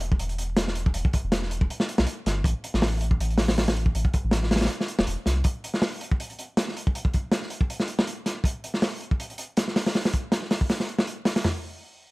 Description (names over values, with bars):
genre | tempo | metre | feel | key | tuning
drum and bass, jungle | 160 BPM | 4/4 | swing 55% on 16ths | E minor | A4 = 440 Hz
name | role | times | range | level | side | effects
soft dub sub bass | bass | 0.0-5.4 s | E1 to C2 | -26 LUFS | equal | none
crunchy breakbeat drum kit | drums | 0.0-11.5 s | hi-hat, kick drum, snare drum, toms | -24 LUFS | equal | none
room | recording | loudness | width
little or no reverb | vinyl crackle | -23 LUFS | side -23 dB against mid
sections
0.0-11.4 A section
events
none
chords
none